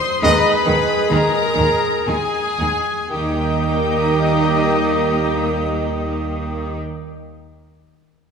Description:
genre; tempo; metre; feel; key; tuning
classical, slow romantic movement for symphony orchestra; 54-72 BPM; 3/4; rubato; Eb major; A4 = 441 Hz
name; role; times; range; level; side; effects
warm studio violin section; melody; 0.0-6.8 s; G5 to C6; -24 LUFS; left 6 dB; none
silver concert flute; second line; 0.0-6.8 s; Eb6; -29 LUFS; left 2 dB; none
warm symphonic violin section; second line; 0.0-6.8 s; G4 to C5; -27 LUFS; left 2 dB; none
clear clarinet; second line; 0.2-6.8 s; G4 to Ab4; -29 LUFS; right 2 dB; none
mellow cor anglais; second line; 0.2-6.8 s; G4 to Cb5; -27 LUFS; right 1 dB; none
dark bassoon; accompaniment; 0.2-6.8 s; Ab3 to Bb3; -26 LUFS; right 1 dB; none
dark symphonic viola section; accompaniment; 0.2-6.8 s; Ab3 to Eb4; -27 LUFS; equal; none
dark trombone section; sustained chords; 0.2-6.8 s; Eb3 to Ab3; -29 LUFS; right 3 dB; none
mellow French horn section; sustained chords; 0.2-6.8 s; Ab3 to Eb4; -26 LUFS; left 2 dB; none
clear trumpet; stabs; 0.2-6.8 s; Eb5; -24 LUFS; right 1 dB; none
dark symphonic double bass section; bass; 0.2-6.8 s; Eb2; -26 LUFS; right 2 dB; none
rich symphonic cello section; bass; 0.2-6.8 s; Eb3; -24 LUFS; right 4 dB; none
room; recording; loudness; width
wet concert hall reverb, RT60 1.9 s; recorded in a church or concert hall; -16 LUFS; side -6 dB against mid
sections
0.0-3.1 A section; 3.1-6.0 B section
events
slowing down 0.0-3.1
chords
0.2 Abm/Eb; 3.1 Eb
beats
| 0.23 1.10 2.06 | 3.11 4.05 5.03

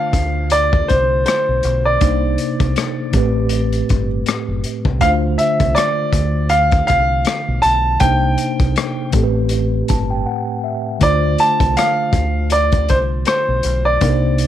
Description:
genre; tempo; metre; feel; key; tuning
R&B, neo-soul; 80 BPM; 4/4; swing 57% on 16ths; D dorian; A4 = 440 Hz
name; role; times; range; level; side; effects
clear baby grand piano; melody; 0.0-14.5 s; C5 to A5; -17 LUFS; equal; slapback echo
mellow tine electric piano; accompaniment; 0.0-14.5 s; A2 to A5; -21 LUFS; equal; medium stereo tremolo
deep dub fingered electric bass; bass; 0.1-14.5 s; F#1 to D2; -19 LUFS; equal; none
crunchy breakbeat drum kit; drums; 0.1-14.5 s; hi-hat, kick drum, rim click; -19 LUFS; left 2 dB; none
room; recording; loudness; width
light reverb, studio ambience; 1960s-style stereo; -14 LUFS; side -11 dB against mid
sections
0.0-14.5 A section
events
tine electric piano fill 9.5-11.0; break 10.3-11.0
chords
0.0 Dm7; 2.0 Cm9; 3.1 Am9; 5.0 Dm7; 8.0 Cm9; 9.1 Am9; 11.0 Dm7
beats
0.51 1.26 | 2.01 2.76 3.51 4.26 | 5.01 5.76 6.51 7.26 | 8.01 8.76 9.51 10.26 | 11.01 11.76 12.51 13.26 | 14.01

